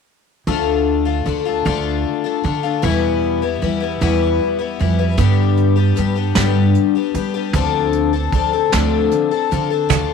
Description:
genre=acoustic folk duo or small band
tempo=51 BPM (dotted quarters)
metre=6/8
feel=straight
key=D dorian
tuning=A4 = 440 Hz
part: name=picked twelve-string acoustic guitar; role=accompaniment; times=0.5-10.1 s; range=E2 to A4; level=-18 LUFS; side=left 10 dB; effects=none
part: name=upright bass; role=bass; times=0.5-10.1 s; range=D2 to G3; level=-18 LUFS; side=right 3 dB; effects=none
part: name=soft brush drum kit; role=drums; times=5.2-10.1 s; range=hi-hat, kick drum, snare drum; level=-22 LUFS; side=right 3 dB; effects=none
part: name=cajon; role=percussion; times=9.9-10.1 s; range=none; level=-17 LUFS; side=right 12 dB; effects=none
room=light reverb, small room ambience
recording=1960s-style stereo with parts hard left and right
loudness=-15 LUFS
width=side -6 dB against mid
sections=0.5-9.9 A section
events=none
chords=0.5 Dm; 2.8 Em; 5.2 G; 7.5 Dm7

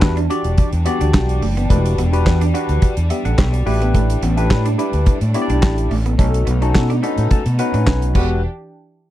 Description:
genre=early-eighties boogie funk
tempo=107 BPM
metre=4/4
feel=straight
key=E dorian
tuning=A4 = 440 Hz
part: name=barky tine electric piano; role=accompaniment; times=0.0-8.4 s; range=C#4 to B5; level=-22 LUFS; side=left 3 dB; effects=overdrive, phaser
part: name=warm symphonic string section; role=sustained chords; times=0.0-8.4 s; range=E3 to G4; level=-28 LUFS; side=right 2 dB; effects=none
part: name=electric guitar at the edge of break-up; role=riff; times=0.0-8.3 s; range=A3 to D4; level=-25 LUFS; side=right 4 dB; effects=analog chorus
part: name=overdriven fingered electric bass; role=bass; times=0.0-8.4 s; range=E1 to B2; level=-17 LUFS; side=equal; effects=none
part: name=damped 70s drum kit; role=drums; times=0.0-8.3 s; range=crash cymbal, handclaps, hi-hat, kick drum, snare drum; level=-17 LUFS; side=equal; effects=none
room=little or no reverb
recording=dry, close 1970s-style studio recording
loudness=-14 LUFS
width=side -14 dB against mid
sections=0.0-8.4 A section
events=tine electric piano fill 6.7-8.4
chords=0.0 Em7; 3.7 A7sus4; 6.2 B9; 8.2 Em7; 8.4 N.C.

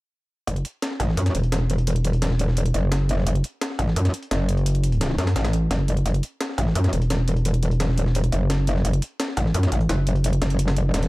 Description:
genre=dark technical drum and bass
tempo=172 BPM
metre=4/4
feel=straight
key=F# minor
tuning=A4 = 440 Hz
part: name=metallic wobble bass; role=bass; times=0.5-11.1 s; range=E1 to F#2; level=-20 LUFS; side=equal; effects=distortion, chorus, tube saturation
part: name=breakbeat sampler-style drum kit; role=drums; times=0.5-11.1 s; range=hi-hat, snare drum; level=-30 LUFS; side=equal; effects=high-pass filter on hats, high-pass filter on snare
part: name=electronic hi-hat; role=drums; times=0.5-11.1 s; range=none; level=-35 LUFS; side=right 1 dB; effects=overdrive
room=little or no reverb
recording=dark, warm production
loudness=-20 LUFS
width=side -20 dB against mid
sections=0.5-11.1 A section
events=none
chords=none

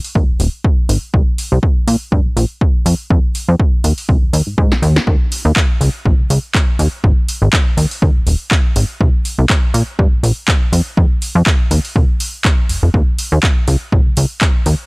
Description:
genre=filtered disco house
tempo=122 BPM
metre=4/4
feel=swing 56% on 16ths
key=Eb mixolydian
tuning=A4 = 440 Hz
part: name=punchy analog drum machine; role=drums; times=0.0-14.8 s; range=handclaps, hi-hat, snare drum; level=-20 LUFS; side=equal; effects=sidechain pumping on hats
part: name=plucky analog bass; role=bass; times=0.2-14.8 s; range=Eb1 to Bb2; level=-13 LUFS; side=equal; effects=sidechain pumping, low-pass filter
part: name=electronic kick drum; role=drums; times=0.2-14.5 s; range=none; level=-13 LUFS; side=equal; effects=none
room=little or no reverb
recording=dry, gritty hardware recording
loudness=-12 LUFS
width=side -30 dB against mid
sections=0.0-14.9 A section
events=drum fill 4.7-5.1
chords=none

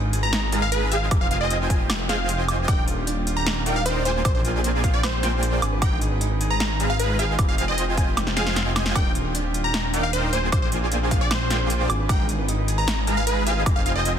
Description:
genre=future bass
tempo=153 BPM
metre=4/4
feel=half-time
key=Eb major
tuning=A4 = 441 Hz
part: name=concert harp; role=arpeggios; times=0.0-14.2 s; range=C4 to C5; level=-32 LUFS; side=right 2 dB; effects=vintage 12-bit sampler grit, sidechain pumping, tape echo
part: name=wide detuned saw bass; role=bass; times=0.0-14.2 s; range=Eb1 to Bb1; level=-25 LUFS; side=equal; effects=chorus, sidechain pumping
part: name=big-room dance drum kit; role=drums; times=0.1-14.1 s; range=hi-hat, snare drum, woodblock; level=-28 LUFS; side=right 1 dB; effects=none
part: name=plucky unison lead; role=melody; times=0.2-14.1 s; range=Cb5 to Bb5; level=-27 LUFS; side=equal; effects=phaser, sidechain pumping, digital delay
part: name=wide unison pluck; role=arpeggios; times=0.5-14.2 s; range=Ab4 to Bb5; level=-36 LUFS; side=equal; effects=none
part: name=dense compressed supersaw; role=riff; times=0.5-14.2 s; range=Ab3 to Bb5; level=-29 LUFS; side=right 1 dB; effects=sidechain pumping, tape echo
part: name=electronic kick drum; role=drums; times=1.1-13.7 s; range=none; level=-22 LUFS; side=equal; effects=none
room=little or no reverb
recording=dense, heavily limited modern master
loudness=-20 LUFS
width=side -8 dB against mid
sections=0.0-14.2 A section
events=drum fill 8.2-9.0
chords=0.0 Abm6; 1.1 Fm9; 2.7 Ebmaj9; 4.2 Bb13; 5.6 Abm6; 7.4 Fm9; 9.0 Ebmaj9; 10.5 Bb13; 11.9 Abm6; 13.7 Fm9

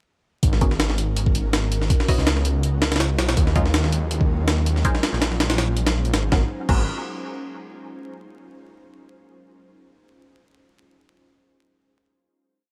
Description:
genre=drum and bass, jungle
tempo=163 BPM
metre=4/4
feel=swing 54% on 16ths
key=G# minor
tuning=A4 = 440 Hz
part: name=detuned saw bass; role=bass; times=0.4-6.9 s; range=G#1 to D#2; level=-24 LUFS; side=equal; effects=tube saturation
part: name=breakbeat sampler-style drum kit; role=drums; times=0.4-6.8 s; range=crash cymbal, hi-hat, kick drum, snare drum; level=-24 LUFS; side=equal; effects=none
part: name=filtered dub chord stab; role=stabs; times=0.6-6.8 s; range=F#3 to D#5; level=-33 LUFS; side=equal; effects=phaser, dub echo
room=little or no reverb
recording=vinyl crackle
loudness=-21 LUFS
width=mono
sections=0.4-6.3 drop; 6.3-7.8 final chord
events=drop 0.4-6.3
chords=0.4 G#m11; 1.9 C#m11; 3.4 D#m11; 4.8 A#m11; 6.3 G#m11

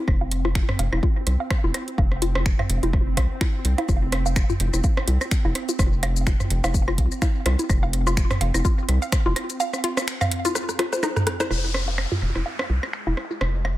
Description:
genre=minimal techno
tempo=126 BPM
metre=4/4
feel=swing 56% on 16ths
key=F minor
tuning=A4 = 438 Hz
part: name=swarming drone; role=texture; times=0.0-13.8 s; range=Ab3 to C4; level=-35 LUFS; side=right 2 dB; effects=built-in reverb, sidechain pumping
part: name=rubbery square bass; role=bass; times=0.1-13.8 s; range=F1 to C2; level=-23 LUFS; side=equal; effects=sidechain pumping
part: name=electronic kick drum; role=drums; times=0.1-9.2 s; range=none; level=-22 LUFS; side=equal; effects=none
part: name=booming analog drum machine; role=percussion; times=0.1-13.8 s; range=bongos, rim click, toms, woodblock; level=-28 LUFS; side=right 1 dB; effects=overdrive, analog delay
part: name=hollow square pluck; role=riff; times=0.2-13.7 s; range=Eb4 to F5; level=-30 LUFS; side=left 1 dB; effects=chorus, phaser, cassette tape, sidechain pumping, tape echo
part: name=house drum kit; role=drums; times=0.3-13.5 s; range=finger snaps, hi-hat, rim click, shaker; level=-29 LUFS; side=left 1 dB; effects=low-pass filter on hats, low-pass filter on snare, low-pass filter on perc, analog delay
part: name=downlifter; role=sound effects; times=11.5-13.8 s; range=none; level=-32 LUFS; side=left 2 dB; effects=none
room=little or no reverb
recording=echo-heavy mix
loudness=-20 LUFS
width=side -15 dB against mid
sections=0.0-11.5 A section; 11.5-13.8 B section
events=filter sweep on synth arpeggio sound 0.0-11.5, 11.5-13.8; drum fill 10.6-11.5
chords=0.0 F5; 11.5 Fm

